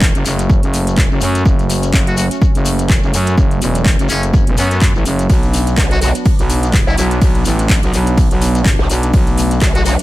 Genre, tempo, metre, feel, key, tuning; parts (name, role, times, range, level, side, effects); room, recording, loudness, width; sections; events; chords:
bass house; 125 BPM; 4/4; swing 56% on 16ths; F# minor; A4 = 438 Hz
sweeping resonant pad; sustained chords; 0.0-10.0 s; F#3 to D4; -22 LUFS; right 1 dB; chorus, sidechain pumping
growling FM bass; bass; 0.0-9.6 s; E1 to F#2; -16 LUFS; equal; overdrive, sidechain pumping
electronic kick drum; drums; 0.0-9.7 s; -14 LUFS; equal; overdrive
house drum kit; drums; 0.0-10.0 s; handclaps, hi-hat, ride cymbal; -22 LUFS; equal; overdrive
shekere; percussion; 0.0-10.0 s; -27 LUFS; left 4 dB
downlifter; sound effects; 0.0-1.5 s; barely audible
trumpet with metal mute; melody; 2.1-9.9 s; B3 to F#4; -24 LUFS; equal; ping-pong delay
growl bass; bass; 5.8-10.0 s; B1; -15 LUFS; equal; chorus, tube saturation, sidechain pumping
digital ambience; -11 LUFS; side -16 dB against mid
0.0-10.0 A section
0.0 F#m; 5.3 Bm